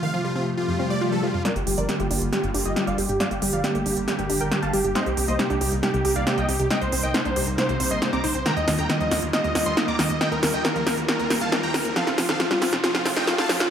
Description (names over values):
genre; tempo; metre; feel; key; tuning
uplifting trance; 137 BPM; 4/4; straight; G minor; A4 = 440 Hz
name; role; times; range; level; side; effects
supersaw chords; melody; 0.0-13.7 s; F4 to D6; -26 LUFS; equal; low-pass filter, tape echo
wide unison pluck; arpeggios; 0.0-13.7 s; Eb2 to C5; -31 LUFS; left 1 dB; tape echo
swell and riser; sound effects; 0.7-13.7 s; none; -33 LUFS; equal; none
plucky unison lead; second line; 1.4-13.7 s; F4 to D6; -32 LUFS; equal; none
big-room dance drum kit; drums; 1.4-13.7 s; hi-hat, snare drum; -25 LUFS; equal; overdrive
tight sequencer bass; bass; 1.6-13.7 s; F1 to Eb2; -31 LUFS; equal; none
room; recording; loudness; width
moderate digital room reverb, RT60 1.0 s, digital ambience; high-pass filter; -20 LUFS; side -8 dB against mid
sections
0.0-1.4 A section; 1.4-13.7 B section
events
swell 0.7-1.4; build-up 1.4-13.7; drum fill 1.4-13.7; filter sweep on supersaw synth 1.4-13.7; filter sweep on synth arpeggio sound 1.4-13.7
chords
0.0 F; 1.4 Gm7; 5.0 Cm7; 8.5 Ebadd9; 12.0 F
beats
0.14 0.57 1.01 | 1.45 1.89 2.33 2.76 | 3.20 3.64 4.08 4.52 | 4.95 5.39 5.83 6.27 | 6.71 7.14 7.58 8.02 | 8.46 8.89 9.33 9.77 | 10.21 10.65 11.09 11.52 | 11.96 12.40 12.84 13.28